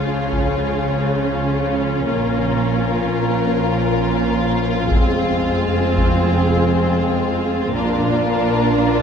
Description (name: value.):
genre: cinematic, epic orchestral film score.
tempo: free time.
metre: none.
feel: none.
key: unclear.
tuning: A4 = 439 Hz.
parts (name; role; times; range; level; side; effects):
dark chamber violin section; melody; 0.0-9.0 s; Ab4 to Bb4; -25 LUFS; left 5 dB; none.
warm symphonic violin section; second line; 0.0-9.0 s; F4; -25 LUFS; left 2 dB; none.
warm symphonic viola section; accompaniment; 0.0-9.0 s; C4 to D4; -25 LUFS; right 3 dB; none.
mellow French horn section; sustained chords; 0.0-9.0 s; F3 to D4; -23 LUFS; left 2 dB; none.
warm symphonic cello section; bass; 0.0-9.0 s; F2 to Db3; -23 LUFS; right 2 dB; none.
warm symphonic double bass section; bass; 0.0-9.0 s; F1 to Db2; -24 LUFS; right 2 dB; none.
taiko ensemble; drums; 0.3-0.6, 4.9-6.3 s; none; -23 LUFS; equal; none.
room: wet concert hall reverb, RT60 2.1 s.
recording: recorded in a church or concert hall.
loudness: -16 LUFS.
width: side -7 dB against mid.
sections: 0.0-9.0 A section.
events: build-up 0.0-9.0.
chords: 0.0 Db; 2.1 Bbm; 4.9 Fm; 7.7 Bb.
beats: free time.